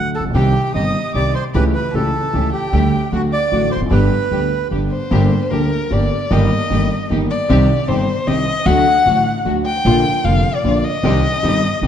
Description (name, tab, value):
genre	tango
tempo	152 BPM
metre	3/4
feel	rubato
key	G major, G minor from 5.1 s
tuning	A4 = 440 Hz
part	bandoneon	melody	0.0-4.7 s	F#4 to F#5	-21 LUFS	right 5 dB	none
part	warm concert grand piano	accompaniment	0.0-11.9 s	F1 to G4	-18 LUFS	left 2 dB	none
part	upright bass	bass	0.0-11.9 s	E1 to D2	-20 LUFS	right 2 dB	none
part	dark violin	second line	0.1-11.9 s	Bb4 to Eb6	-20 LUFS	left 3 dB	none
part	rich studio string section	stabs	0.3-11.9 s	A3 to G4	-25 LUFS	right 3 dB	none
room	wet scoring stage reverb, RT60 1.7 s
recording	dark, warm production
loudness	-14 LUFS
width	side -9 dB against mid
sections	0.0-5.1 A section; 5.1-11.9 B section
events	violin solo 5.1-11.9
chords	0.3 Cm; 1.5 A7/C#; 2.7 Dsus4; 3.1 D; 3.9 G; 5.1 Gm; 6.3 Eb/G; 7.5 Cm; 8.7 D; 9.9 Bb; 11.0 Cm